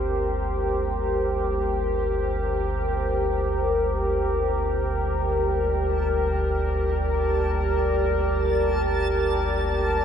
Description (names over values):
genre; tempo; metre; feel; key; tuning
dark ambient drone; free time; none; none; G minor; A4 = 438 Hz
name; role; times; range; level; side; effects
deep dark ambient pad; sustained chords; 0.0-10.0 s; G4 to D5; -24 LUFS; equal; chorus, built-in reverb
deep rumbling drone; drone; 0.0-10.0 s; G1 to D2; -26 LUFS; equal; built-in reverb, lush chorus
backwards swelling texture; texture; 6.0-10.0 s; A5; -34 LUFS; right 2 dB; built-in reverb, analog chorus
room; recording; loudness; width
wet huge ambient reverb, RT60 7.8 s; dreamy mix soaked in reverb; -22 LUFS; side -8 dB against mid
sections
0.0-10.0 A section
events
filter sweep on synth drone 0.0-10.0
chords
0.0 Gm